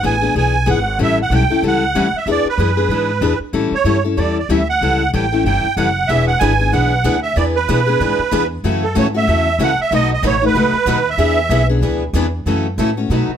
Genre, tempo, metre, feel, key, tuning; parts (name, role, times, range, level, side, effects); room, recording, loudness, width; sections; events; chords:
acoustic string swing (jazz manouche); 188 BPM; 4/4; swing 58% on 8ths; E mixolydian; A4 = 440 Hz
musette accordion; melody; 0.0-11.7 s; A4 to G#5; -17 LUFS; right 5 dB
picked steel-string acoustic guitar; accompaniment; 0.0-13.3 s; B2 to A4; -19 LUFS; left 5 dB
upright bass; bass; 0.0-13.3 s; E1 to B2; -19 LUFS; equal
picked steel-string acoustic guitar; accompaniment; 6.1-13.3 s; B2 to B4; -24 LUFS; right 7 dB
light reverb; -14 LUFS; side -9 dB against mid
0.0-13.4 A section
0.0 E7; 1.0 A7; 2.3 E7; 3.5 A7; 6.1 E7; 8.6 F#m7; 9.9 B7; 11.2 E7; 12.5 F#m7